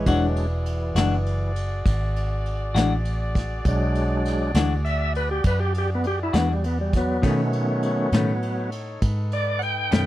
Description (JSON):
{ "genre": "slow blues", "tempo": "67 BPM (dotted quarters)", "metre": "12/8", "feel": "straight", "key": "E mixolydian", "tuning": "A4 = 440 Hz", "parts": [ { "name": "bright tonewheel organ", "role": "sustained chords", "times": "0.0-10.1 s", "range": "D#3 to G5", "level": "-25 LUFS", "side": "right 1 dB", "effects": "slow rotary speaker" }, { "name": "warm horn section", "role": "sustained chords", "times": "0.0-10.1 s", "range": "D#4 to D5", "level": "-34 LUFS", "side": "left 1 dB", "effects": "none" }, { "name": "vintage muted fingered electric bass", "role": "bass", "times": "0.0-10.1 s", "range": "E1 to B2", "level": "-24 LUFS", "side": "equal", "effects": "none" }, { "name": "semi-hollow electric guitar", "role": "accompaniment", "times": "0.1-10.1 s", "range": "B2 to F#4", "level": "-23 LUFS", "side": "left 4 dB", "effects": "harmonic tremolo" }, { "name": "vintage brush drum kit", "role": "drums", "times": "0.1-10.1 s", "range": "kick drum, ride cymbal, snare drum", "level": "-25 LUFS", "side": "equal", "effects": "none" } ], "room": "little or no reverb", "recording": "dry, close 1970s-style studio recording", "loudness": "-21 LUFS", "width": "side -14 dB against mid", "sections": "0.0-10.1 A section", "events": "tonewheel organ solo 0.0-10.1", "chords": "0.1 E9; 7.2 B9" }